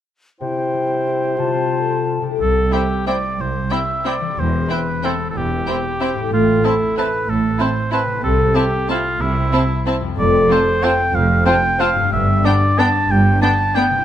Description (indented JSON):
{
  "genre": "classical, orchestral ballroom waltz",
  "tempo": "184 BPM",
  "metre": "3/4",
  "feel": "uneven beats, rubato",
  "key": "C major",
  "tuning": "A4 = 440 Hz",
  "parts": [
    { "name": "mellow hollow silver concert flute", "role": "second line", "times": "0.4-2.2 s", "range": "G5 to A5", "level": "-24 LUFS", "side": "left 2 dB", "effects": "none" },
    { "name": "warm clarinet", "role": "second line", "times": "0.4-2.2 s", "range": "E4 to F4", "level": "-26 LUFS", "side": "left 4 dB", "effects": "none" },
    { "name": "warm oboe", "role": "second line", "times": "0.4-14.0 s", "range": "E4 to A5", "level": "-20 LUFS", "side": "right 1 dB", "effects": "none" },
    { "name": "mellow bassoon", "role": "accompaniment", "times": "0.4-2.2 s", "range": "C3", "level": "-22 LUFS", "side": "equal", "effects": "none" },
    { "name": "concert harp", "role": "arpeggios", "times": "0.4-14.0 s", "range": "F2 to A4", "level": "-22 LUFS", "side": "left 4 dB", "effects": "none" },
    { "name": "warm symphonic cello section", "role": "bass", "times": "2.4-13.4 s", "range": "C2 to C3", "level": "-23 LUFS", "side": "right 3 dB", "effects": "none" },
    { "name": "warm symphonic double bass section", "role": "bass", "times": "2.4-13.4 s", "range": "E1 to C2", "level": "-21 LUFS", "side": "right 2 dB", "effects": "none" },
    { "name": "warm symphonic violin section", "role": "melody", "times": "2.7-13.8 s", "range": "G5 to A5", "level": "-30 LUFS", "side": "left 4 dB", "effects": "none" },
    { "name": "warm symphonic violin section", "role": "second line", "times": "2.7-13.8 s", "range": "D4 to F4", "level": "-27 LUFS", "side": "left 2 dB", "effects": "none" },
    { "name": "warm studio viola section", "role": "accompaniment", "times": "2.7-13.8 s", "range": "B3 to C4", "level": "-24 LUFS", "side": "equal", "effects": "none" }
  ],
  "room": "moderate concert hall reverb, RT60 1.9 s",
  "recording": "none",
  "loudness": "-15 LUFS",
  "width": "side -10 dB against mid",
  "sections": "0.4-2.4 A section; 2.4-14.0 B section",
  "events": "none",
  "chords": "0.4 C; 1.4 F/C; 2.4 C; 4.4 C/E; 6.3 Am; 8.2 Am/C; 10.2 F; 12.1 G"
}